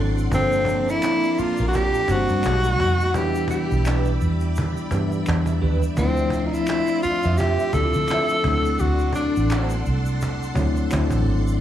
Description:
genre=R&B, neo-soul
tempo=85 BPM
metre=4/4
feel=swing 58% on 16ths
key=D minor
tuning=A4 = 439 Hz
part: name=electric guitar through a small old amp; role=second line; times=0.0-9.7 s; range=C4 to E5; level=-30 LUFS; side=right 3 dB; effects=ensemble chorus, slapback echo
part: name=tine electric piano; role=accompaniment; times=0.0-11.6 s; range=E3 to C5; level=-27 LUFS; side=left 1 dB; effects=overdrive, fast stereo tremolo, slapback echo
part: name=string machine, violins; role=sustained chords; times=0.0-11.6 s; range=F3 to C6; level=-32 LUFS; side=equal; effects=ensemble chorus
part: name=vintage muted fingered electric bass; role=bass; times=0.0-11.6 s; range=G1 to E3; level=-22 LUFS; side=equal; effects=none
part: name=egg shaker and finger snaps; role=percussion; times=0.2-11.6 s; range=none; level=-40 LUFS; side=left 2 dB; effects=none
part: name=breathy tenor saxophone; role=melody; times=0.3-9.8 s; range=C4 to A4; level=-22 LUFS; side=left 1 dB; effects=slapback echo
part: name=cajon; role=drums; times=0.3-11.4 s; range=none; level=-31 LUFS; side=equal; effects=slapback echo
room=little or no reverb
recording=live gig heard through the venue's PA, club reverb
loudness=-19 LUFS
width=side -11 dB against mid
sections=0.0-11.6 A section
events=none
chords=0.3 Gm11; 2.4 B7b13; 3.1 Em7; 6.0 Dm9; 8.4 D7

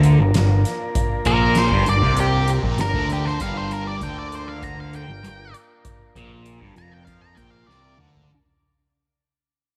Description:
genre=psychedelic rock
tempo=98 BPM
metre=4/4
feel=straight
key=G minor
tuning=A4 = 440 Hz
part: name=overdriven combo organ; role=sustained chords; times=0.0-8.3 s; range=Bb3 to Bb4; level=-34 LUFS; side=equal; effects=none
part: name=thick fuzz guitar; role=riff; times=0.0-8.3 s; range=F2 to F3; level=-23 LUFS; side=equal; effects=distortion, phaser
part: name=growling fingered electric bass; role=bass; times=0.0-8.3 s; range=F1 to F2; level=-26 LUFS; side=equal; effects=overdrive
part: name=soft-mallet drum kit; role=drums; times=0.0-8.3 s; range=hi-hat, kick drum, snare drum, toms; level=-28 LUFS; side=equal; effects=none
part: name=octave-fuzz lead guitar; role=melody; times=1.3-8.0 s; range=G4 to Bb5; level=-27 LUFS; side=equal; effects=distortion, tape echo
room=light reverb, studio reverb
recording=none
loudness=-20 LUFS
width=mono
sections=0.0-8.3 A section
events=fade-out 0.0-8.3; lead electric guitar solo 0.0-8.3; drum fill 7.7-8.3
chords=0.0 Gm

